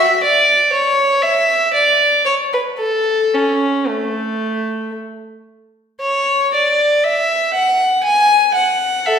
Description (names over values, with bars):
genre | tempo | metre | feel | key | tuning
classical, baroque-style suite movement for unaccompanied violin | 55-61 BPM | 3/4 | rubato | A major | A4 = 441 Hz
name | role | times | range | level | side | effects
rich violin | solo | 0.0-9.2 s | A3 to G#5 | -13 LUFS | equal | none
room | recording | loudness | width
wet recital hall reverb, RT60 1.2 s | recorded in a church or concert hall | -13 LUFS | side -7 dB against mid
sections
0.0-6.0 A section; 6.0-9.2 B section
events
none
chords
none